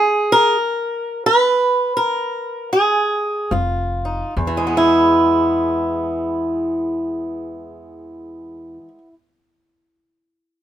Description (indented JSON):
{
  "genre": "acoustic country blues, solo or duo",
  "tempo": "67-91 BPM",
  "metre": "4/4",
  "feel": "swing 62% on 8ths",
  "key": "unclear",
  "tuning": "A4 = 440 Hz",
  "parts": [
    { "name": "fingerpicked swing-style acoustic guitar", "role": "melody", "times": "0.0-9.1 s", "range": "E2 to B4", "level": "-16 LUFS", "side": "right 1 dB", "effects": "none" },
    { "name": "upright bass", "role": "bass", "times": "3.5-8.7 s", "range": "E#1 to E2", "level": "-27 LUFS", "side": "left 1 dB", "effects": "none" }
  ],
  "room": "light reverb",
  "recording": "minimal, uncompressed stereo recording",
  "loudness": "-16 LUFS",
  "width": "side -11 dB against mid",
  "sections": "0.0-4.4 A section; 4.4-7.9 B section",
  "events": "slowing down 0.0-4.4; stop 0.0-3.5",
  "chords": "0.0 N.C.; 3.5 D#sus2/E#; 4.4 E"
}